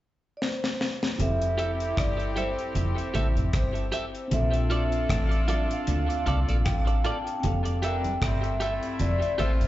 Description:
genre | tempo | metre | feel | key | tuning
lovers rock reggae | 77 BPM | 4/4 | swing 56% on 16ths | F major | A4 = 440 Hz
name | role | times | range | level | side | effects
vibraphone with soft mallets | melody | 0.4-9.7 s | C5 to G5 | -32 LUFS | equal | tape echo, slapback echo
deep reggae drum kit | drums | 0.4-9.7 s | hi-hat, kick drum, rim click, snare drum | -31 LUFS | left 1 dB | none
warm horn section | second line | 1.2-9.7 s | G3 to A4 | -35 LUFS | left 1 dB | tape echo, slapback echo
mellow tine electric piano | accompaniment | 1.2-9.7 s | C4 to A5 | -35 LUFS | left 3 dB | slow stereo tremolo, tape echo, slapback echo
deep dub fingered electric bass | bass | 1.2-9.7 s | F1 to D2 | -26 LUFS | equal | none
congas | percussion | 1.2-9.6 s | none | -36 LUFS | right 4 dB | none
twelve-string electric guitar | stabs | 1.6-9.5 s | F4 to E5 | -34 LUFS | right 2 dB | tape echo, slapback echo
room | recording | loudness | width
little or no reverb | live gig heard through the venue's PA, club reverb, nothing above 7.8 kHz | -24 LUFS | side -15 dB against mid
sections
0.0-1.2 A section; 1.2-7.4 B section; 7.4-9.7 C section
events
drum fill 0.4-1.2; tine electric piano fill 6.3-7.4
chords
0.0 N.C.; 1.2 Fmaj9; 4.3 Bbmaj7; 7.4 Fmaj9

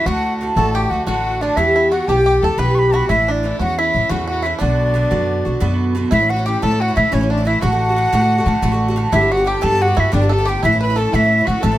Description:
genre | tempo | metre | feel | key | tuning
celtic folk, Celtic slip jig | 119 BPM (dotted quarters) | 9/8 | straight | B minor | A4 = 440 Hz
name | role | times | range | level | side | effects
bright wooden flute | melody | 0.0-11.8 s | C#5 to C#6 | -19 LUFS | equal | none
bluegrass banjo | second line | 0.0-11.8 s | C#4 to B4 | -27 LUFS | right 4 dB | none
rich fiddle | second line | 0.0-11.8 s | C#4 to B4 | -25 LUFS | left 4 dB | none
Irish bouzouki | accompaniment | 0.0-11.8 s | G2 to G4 | -21 LUFS | right 1 dB | none
upright bass | bass | 0.1-11.8 s | G1 to A2 | -18 LUFS | equal | none
room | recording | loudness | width
little or no reverb | close, detailed microphones | -14 LUFS | side -14 dB against mid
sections
0.0-6.1 A section; 6.1-11.8 B section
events
none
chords
0.1 D; 1.6 Em; 3.1 A; 4.6 Bm; 6.1 A; 7.6 D/A; 9.1 Gadd9; 10.6 A

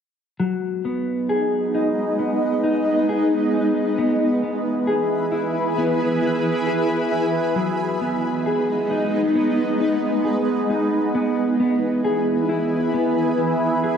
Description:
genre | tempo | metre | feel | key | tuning
dream pop | 67 BPM | 4/4 | straight | B major | A4 = 440 Hz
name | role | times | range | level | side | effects
shimmering ambient pad | sustained chords | 1.3-14.0 s | E3 to B4 | -22 LUFS | equal | chorus, built-in reverb, phaser
mellow electric guitar | arpeggios | 0.4-14.0 s | F#3 to G#4 | -22 LUFS | equal | wide subtle chorus, tape echo
room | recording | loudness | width
wet concert hall reverb, RT60 2.4 s | none | -19 LUFS | side -7 dB against mid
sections
0.4-14.0 A section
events
none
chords
0.4 B6; 4.0 E; 7.6 B6; 11.1 E

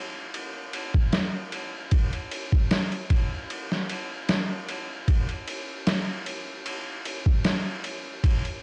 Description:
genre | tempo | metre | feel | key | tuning
trip hop | 76 BPM | 4/4 | swing 53% on 16ths | none | none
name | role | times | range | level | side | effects
trip hop sampler-style drum kit | drums | 0.3-8.6 s | kick drum, ride cymbal, snare drum | -28 LUFS | equal | none
room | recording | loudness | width
light reverb | dark, warm production, vinyl crackle, nothing above 10.4 kHz | -28 LUFS | mono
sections
0.0-8.6 A section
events
none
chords
none

